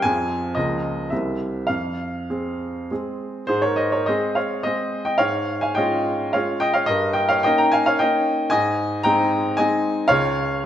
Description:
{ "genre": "classical, romantic triple-time dance for piano with dotted rhythms", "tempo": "94-123 BPM", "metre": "3/4", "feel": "rubato", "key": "F minor, Ab major from 3.5 s", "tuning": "A4 = 440 Hz", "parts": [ { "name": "clear baby grand piano", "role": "solo", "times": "0.0-10.7 s", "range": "C2 to Bb5", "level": "-19 LUFS", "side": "equal", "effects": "none" } ], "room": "wet recital hall reverb, RT60 1.6 s", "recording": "none", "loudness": "-19 LUFS", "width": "side -10 dB against mid", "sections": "0.0-3.5 A section; 3.5-10.7 B section", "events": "none", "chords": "0.0 Fm; 0.6 Bbm/Db; 1.1 C7; 1.7 Fm; 3.5 Ab; 5.2 Db/Ab; 6.9 Eb7/G; 8.5 Ab; 10.1 Db" }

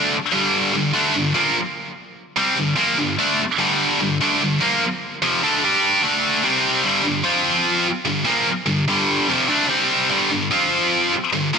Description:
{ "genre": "rock", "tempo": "148 BPM", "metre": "4/4", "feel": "straight", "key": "unclear", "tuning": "A4 = 438 Hz", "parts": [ { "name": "heavy high-gain guitar", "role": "solo", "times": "0.0-11.6 s", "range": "F2 to G4", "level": "-16 LUFS", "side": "equal", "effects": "distortion, digital delay" } ], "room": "moderate lush hall reverb, RT60 2.1 s", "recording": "bright 1980s-style digital production", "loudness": "-16 LUFS", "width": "side -6 dB against mid", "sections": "0.0-6.9 A section; 6.9-11.6 B section", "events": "none", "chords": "0.0 G5; 6.0 D5; 6.4 C5; 6.9 G5; 7.3 F5; 7.9 G5; 9.7 C5; 10.1 G5; 10.5 F5" }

